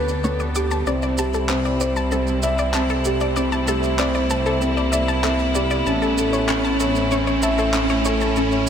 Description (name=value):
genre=piano and strings electronica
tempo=96 BPM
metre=4/4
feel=straight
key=unclear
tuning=A4 = 439 Hz
part: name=warm chamber string section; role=sustained chords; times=0.0-8.7 s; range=D3 to B4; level=-26 LUFS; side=equal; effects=none
part: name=felt-muted upright piano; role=riff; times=0.0-8.7 s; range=B3 to E5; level=-22 LUFS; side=equal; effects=ping-pong delay
part: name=dark detuned saw bass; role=bass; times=0.0-8.7 s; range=A1 to D2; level=-25 LUFS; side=equal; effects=none
part: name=riser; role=sound effects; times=0.4-8.7 s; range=none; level=-30 LUFS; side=right 1 dB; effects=none
part: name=electronic shaker and handclaps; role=drums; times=0.1-8.6 s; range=none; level=-29 LUFS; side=right 1 dB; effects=high-pass filter on perc, high-pass filter on snare, high-pass filter on room
part: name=wide unison pluck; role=arpeggios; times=0.2-8.5 s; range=A4 to D6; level=-27 LUFS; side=left 4 dB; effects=ping-pong delay
room=moderate lush hall reverb, RT60 3.0 s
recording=faint mains hum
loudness=-18 LUFS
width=side -8 dB against mid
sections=0.0-8.7 A section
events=build-up 0.0-8.7; filter sweep on string section 0.0-8.7; riser 0.4-8.7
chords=0.0 Gadd9/D; 0.9 C; 5.9 A